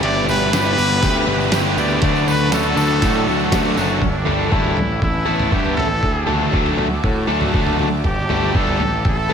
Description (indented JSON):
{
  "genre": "indie rock",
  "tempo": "120 BPM",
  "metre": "4/4",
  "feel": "straight",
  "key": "D major",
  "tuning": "A4 = 440 Hz",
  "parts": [
    { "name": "bright trumpet", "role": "melody", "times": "0.0-9.3 s", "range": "D4 to D5", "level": "-22 LUFS", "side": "equal", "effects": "ping-pong delay" },
    { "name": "lush unison pad", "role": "sustained chords", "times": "0.0-9.3 s", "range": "F#4 to E6", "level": "-29 LUFS", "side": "right 1 dB", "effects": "chorus" },
    { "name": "sludgy distorted guitar", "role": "riff", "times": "0.0-9.3 s", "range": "D3 to A4", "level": "-20 LUFS", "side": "left 1 dB", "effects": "overdrive" },
    { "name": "fuzz picked electric bass", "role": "bass", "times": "0.0-9.3 s", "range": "F#1 to A2", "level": "-22 LUFS", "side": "equal", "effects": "overdrive" },
    { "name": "dusty soul sampler-style drum kit", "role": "drums", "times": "0.0-9.2 s", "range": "kick drum, ride cymbal, snare drum, toms", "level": "-22 LUFS", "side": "equal", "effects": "overdrive" },
    { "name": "tambourine", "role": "percussion", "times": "0.3-4.0 s", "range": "none", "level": "-37 LUFS", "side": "right 9 dB", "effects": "none" }
  ],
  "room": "moderate huge ambient reverb, RT60 4.9 s",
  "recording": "dreamy mix soaked in reverb",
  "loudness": "-15 LUFS",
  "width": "side -7 dB against mid",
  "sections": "0.0-4.0 A section; 4.0-9.3 B section",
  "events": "trumpet solo 0.0-4.0",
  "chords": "0.0 Em7/G; 2.0 Dmaj7; 4.0 Gsus2; 4.8 Asus2; 6.0 Dadd9; 8.0 Gsus2; 8.8 Asus2",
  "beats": "| 0.03 0.53 1.02 1.52 | 2.02 2.52 3.02 3.52 | 4.02 4.52 5.02 5.52 | 6.03 6.53 7.04 7.54 | 8.04 8.55 9.05"
}